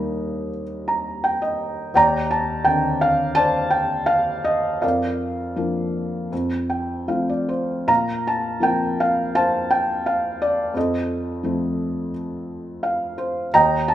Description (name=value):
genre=classical, lyrical solo piano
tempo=74-89 BPM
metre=4/4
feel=rubato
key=Bb major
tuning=A4 = 438 Hz
part: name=felt-muted upright piano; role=solo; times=0.0-13.9 s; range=Eb2 to Bb5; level=-19 LUFS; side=equal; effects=none
room=moderate recital hall reverb, RT60 1.6 s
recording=minimal, uncompressed stereo recording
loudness=-19 LUFS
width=side -12 dB against mid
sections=0.0-13.9 A section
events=felt piano fill 0.5-1.9, 6.3-7.9, 12.5-13.5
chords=0.0 Eb; 1.9 Cmadd9/Eb; 4.8 Bb/F; 6.3 F; 7.9 Bbsus2; 10.8 F